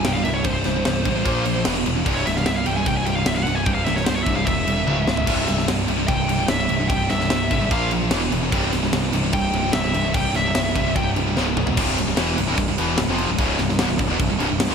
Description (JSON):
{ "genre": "heavy metal", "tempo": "148 BPM", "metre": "4/4", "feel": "straight", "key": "C phrygian dominant", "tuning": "A4 = 440 Hz", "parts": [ { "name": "high-gain lead guitar", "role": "melody", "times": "0.0-11.1 s", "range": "C5 to Ab5", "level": "-25 LUFS", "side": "equal", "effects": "distortion" }, { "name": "high-gain distorted guitar", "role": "riff", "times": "0.0-14.7 s", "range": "C2 to Bb3", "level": "-27 LUFS", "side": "left 11 dB", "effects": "distortion" }, { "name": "high-gain distorted guitar", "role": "riff", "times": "0.0-14.7 s", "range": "C2 to Bb3", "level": "-26 LUFS", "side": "right 11 dB", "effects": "distortion" }, { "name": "scooped high-gain guitar", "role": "riff", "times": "0.0-14.7 s", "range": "C2 to Bb3", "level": "-28 LUFS", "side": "left 2 dB", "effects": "distortion" }, { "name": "fuzz picked electric bass", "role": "bass", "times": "0.0-14.7 s", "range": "C1 to B1", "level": "-26 LUFS", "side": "equal", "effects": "overdrive" }, { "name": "tight metal drum kit", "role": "drums", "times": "0.0-14.7 s", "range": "crash cymbal, kick drum, snare drum, toms", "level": "-24 LUFS", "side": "equal", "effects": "gated reverb" } ], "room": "moderate lush hall reverb, RT60 2.2 s", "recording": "bright 1980s-style digital production", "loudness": "-18 LUFS", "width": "side -6 dB against mid", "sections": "0.0-11.8 A section; 11.8-14.7 B section", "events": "lead electric guitar solo 0.0-11.8; drum fill 4.9-5.3, 11.4-11.8", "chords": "0.0 C5; 1.3 Bb5; 1.7 E5; 2.1 C; 4.9 Db5; 5.3 C; 7.7 Bb5; 8.1 E5; 8.5 C; 11.4 Db5; 11.8 C" }